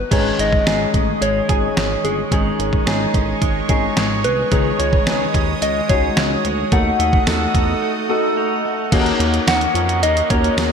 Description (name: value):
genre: 1980s-style pop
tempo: 109 BPM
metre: 4/4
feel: straight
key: unclear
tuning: A4 = 441 Hz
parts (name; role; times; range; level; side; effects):
- soft struck synth lead; melody; 0.0-10.7 s; G#4 to F#5; -22 LUFS; left 2 dB; chorus, shimmer reverb
- warm grand piano; accompaniment; 0.0-10.7 s; F#3 to B4; -22 LUFS; left 4 dB; shimmer reverb
- chorused synth bass; bass; 0.0-10.7 s; G1 to F2; -23 LUFS; right 1 dB; none
- phased analog pad; sustained chords; 0.6-10.7 s; A4 to D#6; -26 LUFS; right 3 dB; phaser, chorus, shimmer reverb
- clean electric guitar; riff; 0.1-10.7 s; D#3 to G#4; -25 LUFS; right 8 dB; lush chorus, shimmer reverb, ping-pong delay
- clean 12-bit digital drum machine; drums; 0.1-10.7 s; crash cymbal, hi-hat, kick drum, snare drum, tambourine; -20 LUFS; right 1 dB; none
- biting overdriven guitar; accompaniment; 8.9-10.7 s; Eb3 to Eb4; -29 LUFS; right 4 dB; none
room: wet lush hall reverb, RT60 1.9 s, digital ambience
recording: bright 1980s-style digital production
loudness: -15 LUFS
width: side -6 dB against mid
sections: 0.1-8.9 A section; 8.9-10.7 B section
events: break 7.8-8.9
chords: 0.1 G#sus4; 4.5 C#sus2; 6.7 D#dim; 8.9 Ebm7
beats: | 0.12 0.67 1.22 1.77 | 2.32 2.87 3.42 3.97 | 4.52 5.07 5.62 6.17 | 6.72 7.27 7.82 8.37 | 8.92 9.47 10.02 10.57